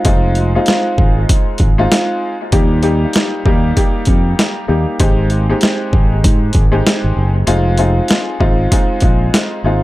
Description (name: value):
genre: hip hop, boom-bap hip-hop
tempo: 97 BPM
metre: 4/4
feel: swing 60% on 16ths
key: F minor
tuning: A4 = 444 Hz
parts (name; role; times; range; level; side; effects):
- warm upright piano; accompaniment; 0.0-9.8 s; G3 to G4; -17 LUFS; left 1 dB; high-pass filter, low-pass filter, dub echo
- boom bap sampler-style drum kit; drums; 0.0-9.5 s; hi-hat, kick drum, snare drum; -14 LUFS; equal; overdrive
- fingered electric bass; bass; 0.1-9.8 s; F1 to Ab2; -14 LUFS; equal; none
room: light reverb, digital ambience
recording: echo-heavy mix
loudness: -11 LUFS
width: side -17 dB against mid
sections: 0.0-9.8 A section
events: kick muted 7.5-8.1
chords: 0.0 Fm7; 2.5 Eb; 5.0 Abmaj7; 7.5 Fm7